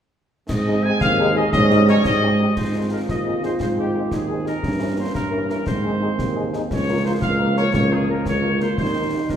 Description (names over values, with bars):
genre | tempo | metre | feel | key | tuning
military-style march for wind band | 116 BPM (dotted quarters) | 6/8 | straight | Ab major | A4 = 440 Hz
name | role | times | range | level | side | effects
mellow trumpet section | melody | 0.5-9.4 s | G4 to Ab5 | -24 LUFS | left 2 dB | none
warm trombone section | sustained chords | 0.5-9.4 s | Eb3 to Eb4 | -29 LUFS | right 4 dB | none
warm tuba | bass | 0.5-9.4 s | Bb1 to Ab2 | -21 LUFS | right 1 dB | none
concert snare drum, clash cymbals and concert bass drum | drums | 0.5-9.4 s | none | -28 LUFS | left 1 dB | none
clear French horn section | accompaniment | 0.7-9.2 s | Bb3 to Bb4 | -27 LUFS | left 3 dB | none
warm euphonium | second line | 2.6-9.4 s | Bb3 to F4 | -28 LUFS | right 2 dB | none
room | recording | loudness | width
wet recital hall reverb, RT60 1.6 s | recorded in a church or concert hall | -18 LUFS | side -9 dB against mid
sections
0.5-2.6 A section; 2.6-9.4 B section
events
none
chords
0.5 Ab; 1.5 Eb7/Ab; 2.6 Ab; 4.6 Gdim7; 5.7 Ab; 6.7 Bbm/Db; 8.8 Eb